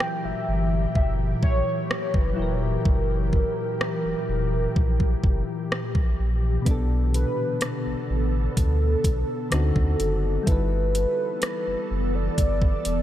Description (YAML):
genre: contemporary R&B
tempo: 63 BPM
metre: 4/4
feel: straight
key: unclear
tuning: A4 = 440 Hz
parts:
  - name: warm velvety synth lead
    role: melody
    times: 0.0-13.0 s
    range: A4 to G5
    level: -29 LUFS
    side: equal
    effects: chorus, analog delay
  - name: soft electric-piano-like synth keys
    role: accompaniment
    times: 0.0-13.0 s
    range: B2 to A#5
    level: -32 LUFS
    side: left 2 dB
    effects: chorus
  - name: ethereal airy pad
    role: sustained chords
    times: 0.0-13.0 s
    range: A#2 to A4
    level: -30 LUFS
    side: left 1 dB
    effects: ensemble chorus, built-in reverb, sidechain pumping
  - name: smooth R&B drum kit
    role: drums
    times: 0.0-13.0 s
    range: hi-hat, kick drum, rim click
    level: -25 LUFS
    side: equal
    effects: none
  - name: warm sub bass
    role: bass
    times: 0.2-13.0 s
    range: E1 to Eb2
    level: -24 LUFS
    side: equal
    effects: none
room: moderate cathedral reverb, RT60 6.4 s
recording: dreamy mix soaked in reverb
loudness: -21 LUFS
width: side -12 dB against mid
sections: 0.0-13.0 A section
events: break 0.0-6.7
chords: 0.0 F#7b9; 6.7 Bm7; 9.5 D7b9; 10.5 G69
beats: 0.00 0.95 1.90 | 2.85 3.81 4.76 5.71 | 6.66 7.62 8.57 9.52 | 10.47 11.43 12.38